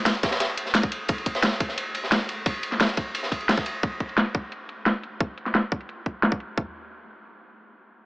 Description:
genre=drum and bass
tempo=175 BPM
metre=4/4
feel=straight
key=none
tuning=none
part: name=crunchy breakbeat drum kit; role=drums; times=0.1-3.7 s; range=ride cymbal, snare drum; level=-28 LUFS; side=equal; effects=high-pass filter on cymbals, high-pass filter on snare, high-pass filter on room
part: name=drum and bass drum kit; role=drums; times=0.1-6.5 s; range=hi-hat, snare drum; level=-25 LUFS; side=equal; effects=overdrive, low-pass filter on hats, low-pass filter on snare
part: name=drum and bass drum kit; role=drums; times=0.2-6.7 s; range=kick drum, toms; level=-26 LUFS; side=equal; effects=overdrive
room=light reverb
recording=small speaker sound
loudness=-23 LUFS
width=side -23 dB against mid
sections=0.0-6.6 A section; 6.6-8.1 B section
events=filter sweep on drum 0.0-6.6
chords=none

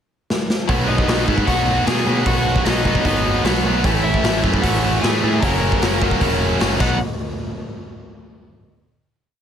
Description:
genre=punk rock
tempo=152 BPM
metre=4/4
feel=straight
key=B major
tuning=A4 = 436 Hz
part: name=raw garage drum kit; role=drums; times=0.3-6.9 s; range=crash cymbal, hi-hat, kick drum, snare drum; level=-21 LUFS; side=equal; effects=none
part: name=distorted electric guitar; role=riff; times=0.7-7.0 s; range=A2 to F#4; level=-22 LUFS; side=right 14 dB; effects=overdrive
part: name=tight distorted guitar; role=riff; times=0.7-7.0 s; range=F#2 to B3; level=-23 LUFS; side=left 12 dB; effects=distortion
part: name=growling picked electric bass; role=bass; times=0.7-7.0 s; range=E1 to B2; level=-22 LUFS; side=equal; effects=overdrive
part: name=crunchy overdriven guitar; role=melody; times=0.9-7.0 s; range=D#4 to A#5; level=-24 LUFS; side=left 2 dB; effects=none
room=little or no reverb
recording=none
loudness=-16 LUFS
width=side -8 dB against mid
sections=0.0-0.7 pickup bar; 0.7-7.0 verse; 7.0-8.6 final hit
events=drum fill 0.3-0.7, 6.8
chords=0.0 N.C.; 0.7 B; 3.8 A; 5.4 F#; 6.8 B; 7.0 N.C.

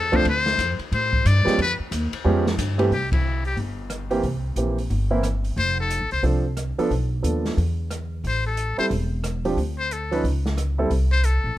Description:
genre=jazz, small-group swing and bop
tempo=180 BPM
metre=4/4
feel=swing 64% on 8ths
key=C major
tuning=A4 = 440 Hz
part: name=trumpet with metal mute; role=melody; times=0.0-3.6, 5.6-6.2, 8.3-11.6 s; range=E4 to D5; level=-24 LUFS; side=left 4 dB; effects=none
part: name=upright bass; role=bass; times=0.0-11.6 s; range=E1 to A2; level=-23 LUFS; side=equal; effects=none
part: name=warm grand piano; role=accompaniment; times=0.1-10.9 s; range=E3 to B4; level=-24 LUFS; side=right 2 dB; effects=none
part: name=open jazz drum kit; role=drums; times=0.1-11.3 s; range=hi-hat, kick drum, ride cymbal, rim click, snare drum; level=-29 LUFS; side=equal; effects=none
room=little or no reverb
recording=close, detailed microphones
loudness=-20 LUFS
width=side -14 dB against mid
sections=0.0-2.9 A section; 2.9-11.6 B section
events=muted trumpet solo 0.0-2.9; band accent 3.1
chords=0.3 Dm7; 1.6 Db7#11; 2.9 C7; 5.6 F6; 6.9 Bm7b5; 7.6 N.C.; 8.2 Am7; 9.6 Dm; 10.2 C#dim; 10.9 Am

